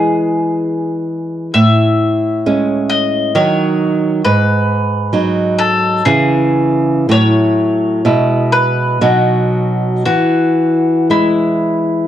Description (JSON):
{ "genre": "romantic duo for mandolin and classical guitar", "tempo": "54-69 BPM", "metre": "3/4", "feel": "rubato", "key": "E major", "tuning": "A4 = 440 Hz", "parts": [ { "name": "bowl-back mandolin", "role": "melody", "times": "0.0-12.1 s", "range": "E4 to E5", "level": "-17 LUFS", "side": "left 2 dB", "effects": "none" }, { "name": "nylon-string guitar", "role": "accompaniment", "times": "0.0-12.1 s", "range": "G#2 to E4", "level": "-13 LUFS", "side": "right 1 dB", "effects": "none" } ], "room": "wet small room reverb, RT60 0.5 s", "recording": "cassette tape", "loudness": "-11 LUFS", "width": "side -11 dB against mid", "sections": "0.0-12.1 A section", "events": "none", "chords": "0.0 E; 1.5 Amaj7; 3.4 D#m7; 4.3 G#m7; 6.1 C#m; 7.1 F#m7/A; 8.1 E/B; 9.0 B; 10.1 E" }